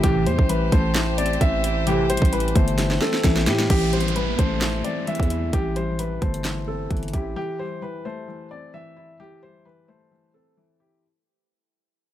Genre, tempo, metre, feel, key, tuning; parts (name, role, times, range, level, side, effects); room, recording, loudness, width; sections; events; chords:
hip hop, trap; 131 BPM; 4/4; half-time; A minor; A4 = 439 Hz
dark baby grand piano; melody; 0.0-11.0 s; G4 to E5; -27 LUFS; equal; digital delay
felt-muted upright piano; accompaniment; 0.0-11.1 s; E3 to E4; -28 LUFS; left 5 dB
warm chamber string section; sustained chords; 0.0-3.7 s; A3 to C5; -32 LUFS; right 1 dB
analog synth brass; stabs; 0.0-2.1 s; A2 to E3; -29 LUFS; right 3 dB; chorus, digital delay
growling 808-style bass; bass; 0.0-7.4 s; G1 to A2; -25 LUFS; right 1 dB
trap drum kit; drums; 0.0-7.2 s; crash cymbal, handclaps, hi-hat, kick drum, snare drum; -22 LUFS; right 1 dB
downlifter; sound effects; 3.7-7.4 s; -31 LUFS; right 2 dB
digital ambience; -19 LUFS; side -12 dB against mid
0.0-3.7 A section; 3.7-11.0 B section
drum fill 2.8-3.7; fade-out 3.7-11.0
0.0 Am7